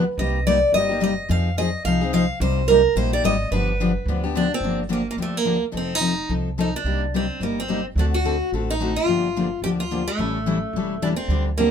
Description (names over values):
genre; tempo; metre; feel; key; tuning
acoustic string swing (jazz manouche); 216 BPM; 4/4; swing 58% on 8ths; C minor, G minor from 4.6 s; A4 = 440 Hz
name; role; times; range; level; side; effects
picked steel-string acoustic guitar; melody; 0.0-11.7 s; A3 to F5; -22 LUFS; right 2 dB; none
picked steel-string acoustic guitar; accompaniment; 0.0-11.7 s; C3 to A4; -24 LUFS; left 4 dB; none
upright bass; bass; 0.0-11.7 s; E1 to F2; -26 LUFS; right 1 dB; none
room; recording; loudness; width
light reverb; minimal, uncompressed stereo recording; -19 LUFS; side -8 dB against mid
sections
0.0-4.6 A section; 4.6-11.7 B section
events
none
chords
0.2 Cm7; 1.3 Fm7; 2.4 Cm7; 3.5 G7; 4.6 Gm7; 5.7 F7; 6.9 Cm7; 8.0 D7b9; 9.1 Gm7; 10.2 A7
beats
| 0.19 0.47 0.74 1.02 | 1.30 1.58 1.85 2.13 | 2.41 2.69 2.96 3.24 | 3.52 3.80 4.07 4.35 | 4.63 4.91 5.18 5.46 | 5.74 6.02 6.30 6.58 | 6.85 7.13 7.41 7.69 | 7.97 8.24 8.52 8.80 | 9.08 9.36 9.63 9.91 | 10.19 10.46 10.74 11.02 | 11.30 11.57